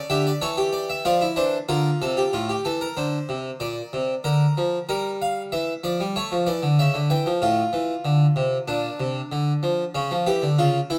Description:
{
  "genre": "classical, baroque-style 3-part fugue for harpsichord",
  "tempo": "94 BPM",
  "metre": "4/4",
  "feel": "straight",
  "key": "unclear",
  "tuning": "A4 = 440 Hz",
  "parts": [
    { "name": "harpsichord", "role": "solo", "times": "0.0-11.0 s", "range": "A2 to G5", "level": "-23 LUFS", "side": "equal", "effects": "none" }
  ],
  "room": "light reverb",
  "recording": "none",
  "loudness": "-23 LUFS",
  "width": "mono",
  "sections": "0.0-2.3 A section; 2.3-11.0 B section",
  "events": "none",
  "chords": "0.0 A7; 1.0 Dm; 2.3 Fmaj7/A; 3.6 Bb; 4.9 Em7b5/G; 6.2 A7 (rootless); 7.4 Dm/A; 8.7 Bbadd9; 10.0 C#dim"
}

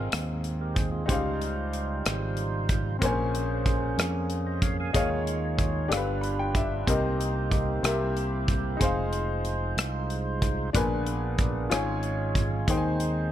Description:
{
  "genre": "slow gospel",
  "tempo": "62 BPM (dotted quarters)",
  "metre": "6/8",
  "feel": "straight",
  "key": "unclear",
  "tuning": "A4 = 441 Hz",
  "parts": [
    { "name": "clear grand piano", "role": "accompaniment", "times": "0.0-13.3 s", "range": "G2 to B5", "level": "-31 LUFS", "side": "left 3 dB", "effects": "none" },
    { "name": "tonewheel organ", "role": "sustained chords", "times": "0.0-13.3 s", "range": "G3 to Ab5", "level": "-33 LUFS", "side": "right 4 dB", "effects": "fast rotary speaker, overdrive" },
    { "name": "fingered electric bass", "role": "bass", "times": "0.0-13.3 s", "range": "F1 to F2", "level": "-30 LUFS", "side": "equal", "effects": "none" },
    { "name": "modern studio drum kit", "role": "drums", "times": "0.1-13.1 s", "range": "hi-hat, kick drum, rim click", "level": "-29 LUFS", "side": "equal", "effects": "none" }
  ],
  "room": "small room ambience",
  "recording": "none",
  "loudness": "-25 LUFS",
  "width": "side -12 dB against mid",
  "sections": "0.0-13.3 A section",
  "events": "grand piano fill 5.9-6.9",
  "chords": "0.0 Ab69; 1.1 Dbmaj9#11; 3.0 Bbm9; 4.9 Eb9sus4; 5.9 G7; 6.9 Cm7; 7.8 C7; 8.8 Fm7; 10.7 Bb7b9; 11.7 Db/Ab; 12.7 Ab/Eb"
}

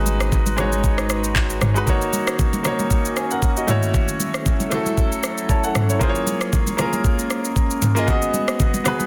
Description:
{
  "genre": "amapiano",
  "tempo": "116 BPM",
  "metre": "4/4",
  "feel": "swing 55% on 16ths",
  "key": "Eb minor",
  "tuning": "A4 = 440 Hz",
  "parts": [
    { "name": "clear grand piano", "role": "accompaniment", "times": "0.0-9.1 s", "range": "Ab3 to A5", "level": "-25 LUFS", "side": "equal", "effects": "none" },
    { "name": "glassy FM pad", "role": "sustained chords", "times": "0.0-9.1 s", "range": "Eb3 to Cb5", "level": "-31 LUFS", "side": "equal", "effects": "ensemble chorus, built-in reverb" },
    { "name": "plucky analog bass", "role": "bass", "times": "0.0-1.8 s", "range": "Ab1", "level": "-27 LUFS", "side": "equal", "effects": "none" },
    { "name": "afro-pop drum kit", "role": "drums", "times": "0.1-9.1 s", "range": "handclaps, kick drum, rim click, shaker, toms", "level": "-23 LUFS", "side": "equal", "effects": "soft clipping on snare" },
    { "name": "congas", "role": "percussion", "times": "0.1-9.1 s", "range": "none", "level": "-30 LUFS", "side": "equal", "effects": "none" }
  ],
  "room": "light reverb",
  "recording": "dense, heavily limited modern master",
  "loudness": "-20 LUFS",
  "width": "mono",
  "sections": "0.0-9.1 A section",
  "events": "none",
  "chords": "0.0 Abm7; 1.9 Ebm7; 3.7 Gbm7; 6.0 Bbm7; 8.1 Abm7"
}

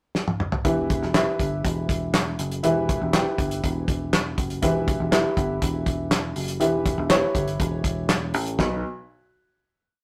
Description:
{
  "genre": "piano-driven pop",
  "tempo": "121 BPM",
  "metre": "4/4",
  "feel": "straight",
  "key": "unclear",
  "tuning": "A4 = 439 Hz",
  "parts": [
    { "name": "damped 70s drum kit", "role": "drums", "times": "0.1-8.7 s", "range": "handclaps, hi-hat, kick drum, snare drum, toms", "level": "-26 LUFS", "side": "equal", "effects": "none" },
    { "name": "felt-muted upright piano", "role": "accompaniment", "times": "0.6-8.8 s", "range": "B1 to G5", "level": "-28 LUFS", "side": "equal", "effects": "none" },
    { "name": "picked electric bass", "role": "bass", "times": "0.6-8.8 s", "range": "E1 to B1", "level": "-30 LUFS", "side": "equal", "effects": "none" }
  ],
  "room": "moderate studio reverb, RT60 0.6 s",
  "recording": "rough rehearsal-room recording, tube saturation",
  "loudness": "-24 LUFS",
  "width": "mono",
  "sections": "0.0-0.7 pickup bar; 0.7-8.6 pre-chorus; 8.6-10.0 final chord",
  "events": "drum fill 0.2-0.7",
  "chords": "0.0 N.C.; 0.7 Em; 8.6 B"
}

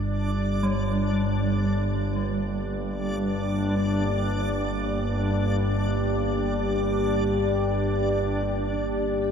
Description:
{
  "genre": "dark ambient drone",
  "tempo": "free time",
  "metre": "none",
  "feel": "none",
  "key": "G minor",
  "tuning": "A4 = 441 Hz",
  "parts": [
    { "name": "analog drone", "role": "drone", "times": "0.0-9.3 s", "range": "G1 to G2", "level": "-26 LUFS", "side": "equal", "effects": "chorus" },
    { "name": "backwards swelling texture", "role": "texture", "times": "0.0-9.3 s", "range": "D4 to D5", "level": "-31 LUFS", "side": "left 1 dB", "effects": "built-in reverb" },
    { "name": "deep dark ambient pad", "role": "sustained chords", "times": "2.4-9.3 s", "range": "Bb3 to D5", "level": "-29 LUFS", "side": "left 1 dB", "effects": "chorus, built-in reverb" },
    { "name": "gamelan-type bronze metallophone", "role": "arpeggios", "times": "0.6-6.7 s", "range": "G3", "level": "-32 LUFS", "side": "right 2 dB", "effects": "ping-pong delay" }
  ],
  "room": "wet huge ambient reverb, RT60 7.8 s",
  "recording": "dark, warm production",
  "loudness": "-23 LUFS",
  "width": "side -7 dB against mid",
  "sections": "0.0-8.8 A section",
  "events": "none",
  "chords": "0.0 Gm"
}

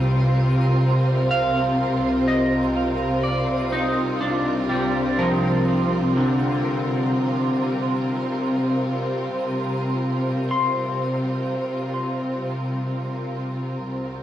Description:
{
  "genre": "ambient",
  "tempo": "62 BPM",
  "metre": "4/4",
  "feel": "straight",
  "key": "C minor",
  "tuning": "A4 = 439 Hz",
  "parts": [
    { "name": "rich studio string section", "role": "sustained chords", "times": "0.0-14.2 s", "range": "C2 to Bb4", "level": "-21 LUFS", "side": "equal", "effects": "cassette tape" },
    { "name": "twinkling granular texture", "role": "texture", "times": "0.0-14.2 s", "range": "C5 to Eb7", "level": "-37 LUFS", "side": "right 4 dB", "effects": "none" },
    { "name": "electric guitar at the edge of break-up", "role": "arpeggios", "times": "1.3-12.5 s", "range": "D3 to C6", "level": "-25 LUFS", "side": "equal", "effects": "analog chorus, cassette tape, tape echo, plate reverb" }
  ],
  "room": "wet booth ambience, RT60 0.2 s",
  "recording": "home recording on cassette",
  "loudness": "-20 LUFS",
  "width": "side -12 dB against mid",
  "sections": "0.0-14.2 A section",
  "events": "fade-out 11.3-14.2",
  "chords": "0.0 Cm11"
}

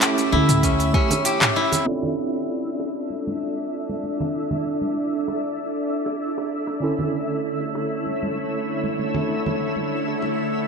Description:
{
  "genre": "organic downtempo",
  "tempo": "97 BPM",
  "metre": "4/4",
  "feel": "straight",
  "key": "D minor",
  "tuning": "A4 = 439 Hz",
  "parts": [
    { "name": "mellow tine electric piano", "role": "accompaniment", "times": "0.0-10.7 s", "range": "D3 to D5", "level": "-28 LUFS", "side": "right 3 dB", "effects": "medium tremolo, vintage 12-bit sampler grit, sidechain pumping, low-pass filter, digital delay" },
    { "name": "steel-string zither", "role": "arpeggios", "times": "0.0-4.2 s", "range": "A3 to G4", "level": "-23 LUFS", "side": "left 1 dB", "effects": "digital delay" },
    { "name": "organic electronic drum kit", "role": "drums", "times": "0.0-1.8 s", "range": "handclaps, hi-hat, shaker, toms", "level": "-21 LUFS", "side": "equal", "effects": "none" },
    { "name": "twinkling granular texture", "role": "texture", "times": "0.0-10.7 s", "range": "E4 to E6", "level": "-32 LUFS", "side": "left 1 dB", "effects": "built-in reverb, ensemble chorus" },
    { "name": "bongos and congas", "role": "percussion", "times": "0.2-10.4 s", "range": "none", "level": "-32 LUFS", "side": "right 3 dB", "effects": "none" },
    { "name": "upright bass", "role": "bass", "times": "0.3-0.9 s", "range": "D2", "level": "-21 LUFS", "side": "left 1 dB", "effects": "sidechain pumping" },
    { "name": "electronic kick drum", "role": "drums", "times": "0.6-1.1 s", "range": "none", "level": "-22 LUFS", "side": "equal", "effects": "none" },
    { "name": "bowed-like drone", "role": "sustained chords", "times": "2.5-10.7 s", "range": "D3 to E5", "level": "-26 LUFS", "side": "left 1 dB", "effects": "built-in reverb, sidechain pumping" }
  ],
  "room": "wet lush hall reverb, RT60 2.7 s",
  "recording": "bright 1980s-style digital production, low-pass filter",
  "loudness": "-21 LUFS",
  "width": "side -5 dB against mid",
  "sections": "0.0-1.9 A section; 1.9-10.7 B section",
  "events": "filter sweep on tine electric piano 1.9-10.7; filter sweep on synth drone 1.9-10.7; filter sweep 1.9-10.7",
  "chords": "0.0 A/D; 1.9 Dm7; 6.8 A/D"
}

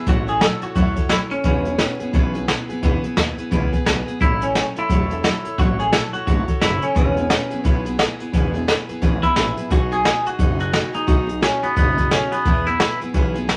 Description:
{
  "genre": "rockabilly",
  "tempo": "174 BPM",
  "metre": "4/4",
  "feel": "swing 61% on 8ths",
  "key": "E major",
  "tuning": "A4 = 440 Hz",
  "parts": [
    { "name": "twangy electric guitar", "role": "melody", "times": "0.0-13.0 s", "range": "B3 to A4", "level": "-25 LUFS", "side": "equal", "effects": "none" },
    { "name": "picked steel-string acoustic guitar", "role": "accompaniment", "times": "0.0-13.6 s", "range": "C#3 to C#5", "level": "-28 LUFS", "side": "equal", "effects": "none" },
    { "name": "upright bass", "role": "bass", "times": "0.1-13.5 s", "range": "E1 to E2", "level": "-28 LUFS", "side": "equal", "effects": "none" },
    { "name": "jazz brush drum kit", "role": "drums", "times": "0.1-13.6 s", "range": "hi-hat, kick drum, snare drum", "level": "-22 LUFS", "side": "equal", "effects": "none" }
  ],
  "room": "moderate studio reverb, RT60 0.6 s",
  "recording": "vinyl crackle",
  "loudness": "-19 LUFS",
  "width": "mono",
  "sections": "0.0-13.6 A section",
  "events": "none",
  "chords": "0.1 A6; 1.5 E6; 4.2 A6; 7.0 E6; 9.7 B6; 12.5 E6"
}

